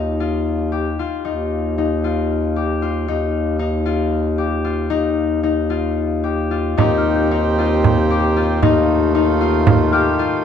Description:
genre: contemporary instrumental, chamber music in an uneven meter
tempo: 228 BPM (eighths)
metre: 7/8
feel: straight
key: Eb lydian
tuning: A4 = 440 Hz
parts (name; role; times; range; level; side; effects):
- concert harp; arpeggios; 0.0-10.4 s; Eb4 to G4; -19 LUFS; left 8 dB; none
- mellow bass clarinet; bass; 0.0-10.3 s; Eb2; -20 LUFS; right 1 dB; none
- hand-pumped harmonium; sustained chords; 6.8-10.4 s; Eb3 to G4; -22 LUFS; right 4 dB; none
- frame drum; percussion; 6.8-10.1 s; none; -19 LUFS; right 7 dB; none
- worn celesta; texture; 6.8-10.4 s; D6 to G6; -25 LUFS; left 2 dB; none
room: moderate concert hall reverb, RT60 2.0 s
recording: dark, warm production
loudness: -16 LUFS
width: side -8 dB against mid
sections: 0.0-6.8 A section; 6.8-10.4 A section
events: none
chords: 0.0 Ebadd9; 6.8 Eb6; 8.6 F7/Eb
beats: 0.20 0.46 0.73 0.99 | 1.25 1.52 1.78 2.04 2.30 2.56 2.82 | 3.08 3.35 3.60 3.87 4.13 4.39 4.65 | 4.92 5.18 5.44 5.71 5.97 6.24 6.51 | 6.78 7.04 7.31 7.57 7.83 8.10 8.36 | 8.62 8.88 9.15 9.41 9.67 9.93 10.19

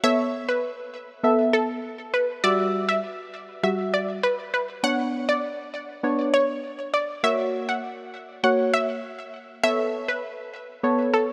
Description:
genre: dance-pop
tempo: 100 BPM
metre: 4/4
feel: straight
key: unclear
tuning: A4 = 440 Hz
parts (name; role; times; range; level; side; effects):
- unison pluck; melody; 0.0-11.3 s; A4 to F#5; -28 LUFS; equal; digital delay
- deep mellow chord stab; accompaniment; 0.0-11.3 s; G3 to E5; -27 LUFS; equal; chorus
room: moderate lush hall reverb, RT60 2.8 s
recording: dark, warm production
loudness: -24 LUFS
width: mono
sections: 0.0-11.3 A section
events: none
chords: 0.0 Aadd9; 2.4 Emadd9/G; 4.8 Bmadd9; 7.2 F#; 9.6 Aadd9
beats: | 0.04 0.64 1.24 1.84 | 2.44 3.04 3.64 4.24 | 4.84 5.44 6.04 6.64 | 7.24 7.84 8.44 9.04 | 9.64 10.24 10.84

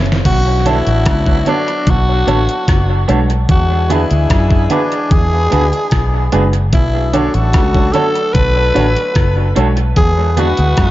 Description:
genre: lovers rock reggae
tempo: 74 BPM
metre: 4/4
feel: straight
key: B dorian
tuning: A4 = 443 Hz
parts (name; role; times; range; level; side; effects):
- vintage muted fingered electric bass; bass; 0.0-10.9 s; F#1 to F#2; -14 LUFS; equal; none
- detuned 8-bit digital drum machine; drums; 0.1-10.9 s; crash cymbal, hi-hat, kick drum, rim click, snare drum; -15 LUFS; equal; overdrive, gated reverb, dub echo
- growling tenor saxophone; melody; 0.3-10.9 s; D4 to B4; -18 LUFS; left 1 dB; dub echo
- warm horn section; second line; 0.3-10.9 s; E3 to B4; -25 LUFS; left 3 dB; none
- congas; percussion; 0.3-10.9 s; none; -24 LUFS; right 5 dB; dub echo
- warm baby grand piano; accompaniment; 0.7-10.5 s; D4 to C#5; -22 LUFS; left 2 dB; dub echo
- electric guitar through a small old amp; stabs; 0.7-10.5 s; B3 to A4; -22 LUFS; right 4 dB; dub echo
room: light reverb, small room ambience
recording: nothing above 7.5 kHz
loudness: -11 LUFS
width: side -15 dB against mid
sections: 0.3-10.9 A section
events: drum fill 0.0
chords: 0.3 Bm7; 3.5 E7; 6.7 Bm7; 10.0 E7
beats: | 0.25 1.06 1.87 2.68 | 3.49 4.30 5.11 5.92 | 6.73 7.54 8.35 9.15 | 9.96 10.77

